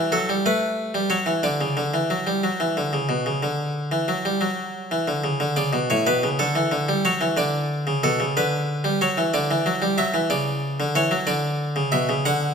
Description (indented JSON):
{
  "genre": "classical, baroque-style two-part invention for harpsichord",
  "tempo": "61 BPM (dotted quarters)",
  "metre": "12/8",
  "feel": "straight",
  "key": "D major",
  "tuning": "A4 = 440 Hz",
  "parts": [
    { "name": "harpsichord", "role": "solo", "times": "0.0-12.5 s", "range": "A2 to F#5", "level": "-20 LUFS", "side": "equal", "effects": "none" }
  ],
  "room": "wet recital hall reverb, RT60 1.6 s",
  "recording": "close, detailed microphones",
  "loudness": "-20 LUFS",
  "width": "side -6 dB against mid",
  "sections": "0.0-5.4 A section; 5.4-12.5 B section",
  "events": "none",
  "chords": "0.5 A7; 1.4 D; 5.4 D5; 7.4 G (rootless); 9.3 D",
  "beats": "0.45 | 1.44 2.43 3.42 4.41 | 5.41 6.39 7.37 8.35 | 9.33 10.31 11.28 12.25"
}